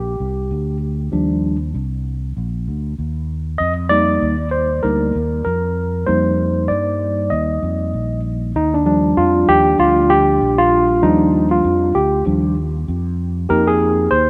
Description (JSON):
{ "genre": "hip hop, jazz-hop", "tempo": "97 BPM", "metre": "4/4", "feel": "swing 57% on 16ths", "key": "Eb major", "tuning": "A4 = 440 Hz", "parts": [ { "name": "tine electric piano", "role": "accompaniment", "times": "0.0-14.3 s", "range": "F3 to Eb5", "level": "-18 LUFS", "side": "equal", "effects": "none" }, { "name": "fretless electric bass", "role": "bass", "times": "0.0-14.3 s", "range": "Bb1 to G2", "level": "-23 LUFS", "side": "equal", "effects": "lush chorus" } ], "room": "moderate lush hall reverb, RT60 2.9 s", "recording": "rough home demo mix", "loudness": "-17 LUFS", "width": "mono", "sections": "0.0-8.6 A section; 8.6-14.3 B section", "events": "tine electric piano solo 0.0-8.6, 8.6-14.3", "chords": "0.0 Ebmaj9; 13.5 F9sus4" }